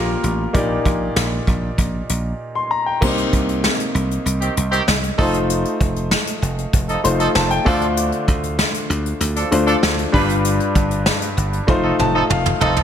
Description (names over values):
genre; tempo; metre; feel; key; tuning
1980s-style pop; 97 BPM; 4/4; straight; unclear; A4 = 440 Hz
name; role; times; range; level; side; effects
clear grand piano; accompaniment; 0.0-12.8 s; G2 to C6; -20 LUFS; left 2 dB; none
dry thumbed slap bass; bass; 0.0-12.8 s; F1 to D2; -22 LUFS; right 1 dB; none
soft brush drum kit; drums; 0.2-12.8 s; crash cymbal, hi-hat, kick drum, snare drum, toms; -20 LUFS; equal; none
clear horn section; stabs; 4.4-12.8 s; Eb3 to B4; -22 LUFS; right 2 dB; none
room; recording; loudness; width
light reverb, studio reverb; none; -16 LUFS; side -9 dB against mid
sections
0.0-3.0 A section; 3.0-12.8 B section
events
grand piano fill 6.7-8.0, 11.7-12.8; drum fill 11.7-12.8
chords
0.0 Gm7/Bb; 0.5 Ebmaj7/Bb; 3.0 Cm7; 5.2 F7; 7.7 Dm7; 10.1 G7; 11.7 F7